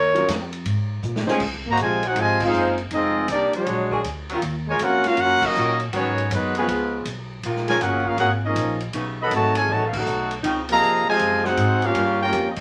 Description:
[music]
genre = jazz, big band swing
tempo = 159 BPM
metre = 4/4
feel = swing 66% on 8ths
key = Db major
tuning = A4 = 440 Hz
[part]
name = warm saxophone section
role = sustained chords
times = 0.0-12.5 s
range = Db3 to C5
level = -30 LUFS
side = equal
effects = none
[part]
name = upright bass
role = bass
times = 0.0-12.6 s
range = F1 to Bb2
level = -31 LUFS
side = equal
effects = none
[part]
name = dark grand piano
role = accompaniment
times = 0.1-1.4 s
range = Gb3 to C5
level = -28 LUFS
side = equal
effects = none
[part]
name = swinging big-band drum kit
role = drums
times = 0.2-12.6 s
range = crash cymbal, hi-hat, kick drum, ride cymbal, snare drum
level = -35 LUFS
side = equal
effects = none
[part]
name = warm trumpet section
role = melody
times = 1.7-12.6 s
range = Ab3 to Cb6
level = -23 LUFS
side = equal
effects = none
[part]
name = mellow trombone section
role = second line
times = 1.7-12.5 s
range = C3 to G4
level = -27 LUFS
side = equal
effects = none
[sound]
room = wet studio ambience, RT60 0.5 s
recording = vinyl crackle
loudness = -22 LUFS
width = mono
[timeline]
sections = 0.0-1.4 A section; 1.4-12.6 B section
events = drum fill 1.0-1.4; band accent 2.4, 5.4, 9.9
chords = 0.0 Ebm7; 0.7 Ab69; 1.4 Dbmaj9; 2.9 Fm7; 3.7 Bb7alt; 4.4 Ebm9; 5.9 Abm7; 6.7 Db7; 7.4 Gbmaj13; 8.9 Cb9; 10.4 Dbmaj9; 12.0 Gm7b5

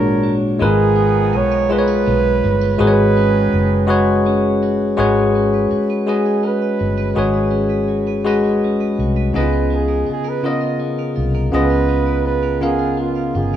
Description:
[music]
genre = slow six-eight R&B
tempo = 55 BPM (dotted quarters)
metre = 6/8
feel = straight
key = G# dorian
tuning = A4 = 438 Hz
[part]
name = warm flugelhorn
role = melody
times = 0.0-13.6 s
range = E#4 to D#5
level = -21 LUFS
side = right 6 dB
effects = slapback echo
[part]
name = clean electric guitar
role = second line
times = 0.0-13.6 s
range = A#2 to B4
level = -28 LUFS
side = right 8 dB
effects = spring reverb
[part]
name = barky tine electric piano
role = accompaniment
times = 0.0-13.6 s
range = A#2 to E#5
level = -16 LUFS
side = left 2 dB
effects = none
[part]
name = mellow horn section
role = stabs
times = 0.0-4.6 s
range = D3 to G#4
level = -29 LUFS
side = right 10 dB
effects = none
[part]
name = vintage muted fingered electric bass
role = bass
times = 0.0-13.6 s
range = F#1 to C#2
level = -20 LUFS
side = equal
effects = none
[sound]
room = light reverb, small room ambience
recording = rough home demo mix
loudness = -14 LUFS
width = side -10 dB against mid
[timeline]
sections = 0.0-5.0 A section; 5.0-13.6 B section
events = flugelhorn solo 5.0-13.6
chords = 0.0 A#7alt; 0.6 G#m69; 2.8 G#m7; 9.3 C#13

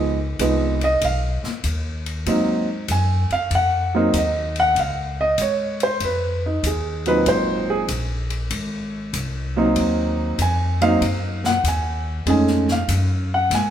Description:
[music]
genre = jazz piano trio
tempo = 96 BPM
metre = 4/4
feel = swing 68% on 8ths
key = Ab mixolydian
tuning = A4 = 440 Hz
[part]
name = warm concert grand piano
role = melody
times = 0.0-13.7 s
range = Bb2 to Ab5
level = -20 LUFS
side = right 1 dB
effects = none
[part]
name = upright bass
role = bass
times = 0.0-13.7 s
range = Ab1 to Ab2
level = -24 LUFS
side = left 1 dB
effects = none
[part]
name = open jazz drum kit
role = drums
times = 0.4-13.7 s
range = hi-hat, kick drum, ride cymbal, snare drum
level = -30 LUFS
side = left 4 dB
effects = none
[sound]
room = moderate large studio reverb, RT60 1.4 s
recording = band playing live in one room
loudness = -18 LUFS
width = side -10 dB against mid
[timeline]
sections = 0.0-13.7 A section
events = none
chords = 0.0 Db9; 2.3 Ab9; 4.8 Dbadd9; 7.3 Ab9; 12.3 F7alt

